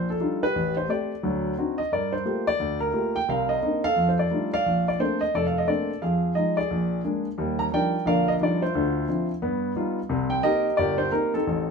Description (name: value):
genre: jazz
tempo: 176 BPM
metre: 4/4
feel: swing 62% on 8ths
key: Bb major, Eb major from 7.4 s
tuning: A4 = 439 Hz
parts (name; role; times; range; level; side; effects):
- warm grand piano; solo; 0.0-11.7 s; F1 to Bb5; -22 LUFS; equal; none
room: wet studio reverb, RT60 0.7 s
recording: band playing live in one room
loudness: -22 LUFS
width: side -5 dB against mid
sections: 0.0-7.4 A section; 7.4-11.7 B section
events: none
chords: 0.0 Ebmaj9; 0.5 Am7; 1.2 D7b9; 1.9 Gm9; 3.3 Cm9; 4.0 F13; 4.6 Bbmaj9; 6.0 Fm7; 6.7 Bb7; 7.4 Ebmaj9; 8.7 Dm9; 9.4 Gaug7; 10.1 Cm7